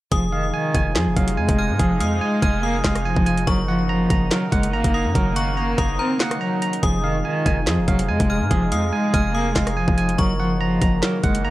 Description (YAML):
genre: hip hop, drill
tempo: 143 BPM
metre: 4/4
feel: half-time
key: F phrygian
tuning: A4 = 441 Hz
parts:
  - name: dark cello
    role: melody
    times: 0.1-11.5 s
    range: Eb3 to C4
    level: -22 LUFS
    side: equal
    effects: none
  - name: metallic FM bell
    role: second line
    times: 0.1-10.6 s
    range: Bb5 to F6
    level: -31 LUFS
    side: left 4 dB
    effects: chorus, digital delay
  - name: barky tine electric piano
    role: accompaniment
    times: 0.1-11.5 s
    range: Ab4 to Bb5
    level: -26 LUFS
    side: right 4 dB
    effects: none
  - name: sweeping resonant pad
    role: sustained chords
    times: 0.1-11.5 s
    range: C3 to Eb4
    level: -31 LUFS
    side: equal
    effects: chorus
  - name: hard-hitting 808-style bass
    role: bass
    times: 0.1-11.5 s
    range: F1 to Ab2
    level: -24 LUFS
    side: equal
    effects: none
  - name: drill drum kit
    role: drums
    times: 0.1-11.4 s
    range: handclaps, hi-hat, kick drum, rim click, snare drum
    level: -22 LUFS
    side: equal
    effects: vintage 12-bit sampler grit
room: digital ambience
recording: none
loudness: -18 LUFS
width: side -16 dB against mid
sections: 0.1-11.5 A section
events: kick muted 6.0-6.8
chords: 0.1 Fm7; 3.5 Gb6; 6.8 Fm7; 10.2 Gb6